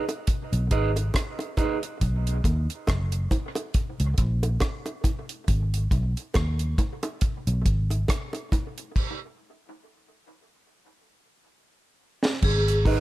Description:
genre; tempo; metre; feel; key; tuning
dub reggae; 69 BPM; 4/4; swing 57% on 16ths; G# minor; A4 = 439 Hz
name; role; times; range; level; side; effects
mellow electric guitar; accompaniment; 0.0-1.9, 12.9-13.0 s; D#4 to D#5; -30 LUFS; right 6 dB; spring reverb, dub echo
deep reggae drum kit; drums; 0.1-13.0 s; crash cymbal, hi-hat, kick drum, rim click, snare drum; -25 LUFS; equal; none
bongos; percussion; 0.1-13.0 s; none; -34 LUFS; right 2 dB; dub echo
vintage muted fingered electric bass; bass; 0.5-13.0 s; F#1 to D#2; -24 LUFS; equal; none
vibraphone with hard mallets; melody; 12.4-13.0 s; G#4; -25 LUFS; equal; none
room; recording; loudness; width
small room ambience; none; -23 LUFS; side -17 dB against mid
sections
0.0-12.4 A section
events
break 0.0-12.4; stop 9.0-12.4; drum fill 11.6-12.4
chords
0.0 G#m; 2.0 B; 3.7 A#m; 5.5 G#m; 9.0 N.C.; 12.4 G#m

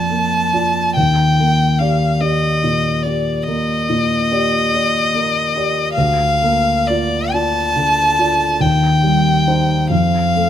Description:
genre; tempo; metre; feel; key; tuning
classical, romantic duo for violin and grand piano; 41-49 BPM (dotted quarters); 12/8; rubato; unclear; A4 = 437 Hz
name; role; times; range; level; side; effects
rich violin; melody; 0.0-10.5 s; D5 to A5; -16 LUFS; left 2 dB; none
dark grand piano; accompaniment; 0.0-10.5 s; D2 to D5; -16 LUFS; equal; none
room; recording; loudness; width
moderate recital hall reverb, RT60 1.4 s; close, detailed microphones; -14 LUFS; side -10 dB against mid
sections
0.0-10.5 A section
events
none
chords
0.0 Bb; 1.0 Ebmaj7; 5.9 Bb/D; 8.6 Cm/Eb; 9.9 F

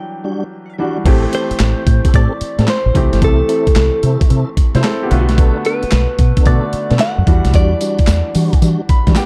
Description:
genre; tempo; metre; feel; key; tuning
R&B, new jack swing; 111 BPM; 4/4; swing 67% on 16ths; A dorian; A4 = 440 Hz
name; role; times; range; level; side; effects
direct-recorded clean electric guitar; melody; 0.0-8.6 s; A4 to G5; -22 LUFS; equal; phaser, digital delay
clear grand piano; accompaniment; 0.0-9.3 s; D3 to B5; -24 LUFS; equal; none
mellow tonewheel organ; stabs; 0.2-9.2 s; G3 to A4; -26 LUFS; equal; chorus vibrato, fast rotary speaker
deep dub fingered electric bass; bass; 1.1-9.1 s; G1 to E3; -17 LUFS; equal; none
dusty soul sampler-style drum kit; drums; 1.1-9.3 s; crash cymbal, handclaps, hi-hat, kick drum, snare drum, tambourine; -16 LUFS; equal; none
room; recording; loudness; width
digital ambience; dark, warm production; -14 LUFS; mono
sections
0.0-1.1 A section; 1.1-9.3 B section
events
break 0.0-1.1; grand piano fill 8.6-9.3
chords
0.0 Em9; 1.1 Am7; 2.9 C6; 5.1 Bm7; 7.3 Em9

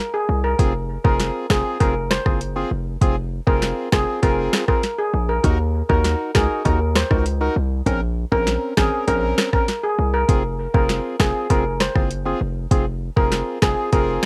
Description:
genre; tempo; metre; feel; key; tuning
dancehall; 99 BPM; 4/4; straight; F phrygian; A4 = 442 Hz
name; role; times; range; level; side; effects
steel pan; melody; 0.1-14.1 s; Ab4 to C5; -26 LUFS; equal; cassette tape
hard-hitting 808-style bass; bass; 0.3-14.2 s; F1 to Eb2; -25 LUFS; equal; none
percussive organ stab; accompaniment; 0.6-14.3 s; C4 to Bb4; -26 LUFS; equal; chorus, cassette tape
island pop drum kit; drums; 0.6-14.3 s; hi-hat, kick drum, rim click, snare drum; -22 LUFS; equal; cassette tape
room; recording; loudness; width
little or no reverb; home recording on cassette; -20 LUFS; mono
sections
0.0-14.3 A section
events
none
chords
0.0 Bbsus2; 0.6 Fm; 5.4 Ebm; 7.9 Bbmadd9; 10.3 Fm

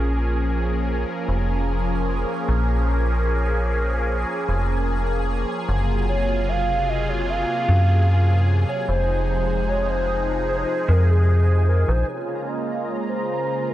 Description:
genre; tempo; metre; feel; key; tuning
IDM; 150 BPM; 4/4; swing 56% on 16ths; Bb minor; A4 = 440 Hz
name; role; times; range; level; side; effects
phased analog pad; sustained chords; 0.0-13.7 s; C3 to Bb4; -25 LUFS; equal; phaser, chorus, vintage 12-bit sampler grit
metallic FM bass; bass; 0.0-12.0 s; F1 to Gb2; -20 LUFS; equal; none
flickering grainy texture; texture; 0.0-13.7 s; Ab5 to Bb5; -34 LUFS; right 1 dB; built-in reverb
warbly nostalgic lead; melody; 6.1-13.7 s; Ab4 to F5; -25 LUFS; equal; lush chorus
room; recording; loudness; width
digital ambience; none; -19 LUFS; side -13 dB against mid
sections
0.0-12.1 A section; 12.1-13.7 B section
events
none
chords
0.0 Bbm7; 5.7 Gbmaj9#11; 8.9 Fm7; 12.1 Bbm7

